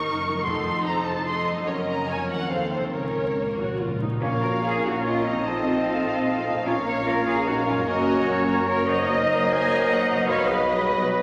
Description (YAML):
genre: classical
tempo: 148 BPM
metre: 3/4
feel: rubato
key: Bb minor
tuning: A4 = 439 Hz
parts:
  - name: warm symphonic violin section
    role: melody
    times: 0.0-11.2 s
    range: C5 to Db6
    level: -34 LUFS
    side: equal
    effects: none
  - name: warm symphonic violin section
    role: second line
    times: 0.0-11.2 s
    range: A4 to Ab5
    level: -34 LUFS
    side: equal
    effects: none
  - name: rich symphonic viola section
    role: accompaniment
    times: 0.0-11.2 s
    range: F#3 to B4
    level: -32 LUFS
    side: equal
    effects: none
  - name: concert harp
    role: arpeggios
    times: 0.0-11.2 s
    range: F2 to B4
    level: -36 LUFS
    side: equal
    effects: none
  - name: rich studio double bass section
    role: bass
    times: 0.0-11.2 s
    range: F1 to Eb2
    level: -38 LUFS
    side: equal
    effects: none
  - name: rich symphonic cello section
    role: bass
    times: 0.0-11.1 s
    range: Db2 to Eb5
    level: -31 LUFS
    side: equal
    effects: none
  - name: timpani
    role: percussion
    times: 0.5-4.8 s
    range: F2 to Bb2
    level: -35 LUFS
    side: equal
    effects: none
  - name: clear clarinet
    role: second line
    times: 4.2-11.1 s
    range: Bb3 to C5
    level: -32 LUFS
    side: equal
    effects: none
  - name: clear oboe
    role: second line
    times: 4.2-11.2 s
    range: Db5 to Eb5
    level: -32 LUFS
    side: equal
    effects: none
  - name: small flute group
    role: second line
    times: 4.2-11.2 s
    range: A5 to B5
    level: -34 LUFS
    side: equal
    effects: none
  - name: clear bassoon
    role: accompaniment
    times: 4.2-11.2 s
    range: Gb3 to C4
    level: -34 LUFS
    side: equal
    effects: none
  - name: dark French horn section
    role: sustained chords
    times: 4.2-11.2 s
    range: A3 to F4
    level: -33 LUFS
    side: equal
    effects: none
room: wet recital hall reverb, RT60 1.7 s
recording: vinyl crackle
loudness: -24 LUFS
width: mono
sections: 0.0-4.2 A section; 4.2-11.2 A section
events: timpani fill 2.9-4.2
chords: 0.5 F7b9; 1.7 Gb; 2.1 Bbm/F; 2.5 F7/Eb; 2.9 Bbm/Db; 4.2 Bbm; 5.4 F7/Bb; 6.7 Bbm; 7.9 Gb; 9.1 Ebm/Gb; 10.3 B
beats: 0.06 | 0.46 0.87 1.28 | 1.68 2.10 2.51 | 2.94 3.38 3.80 | 4.22 4.63 5.04 | 5.45 5.85 6.26 | 6.66 7.07 7.47 | 7.87 8.28 8.69 | 9.10 9.49 9.89 | 10.29 10.69 11.09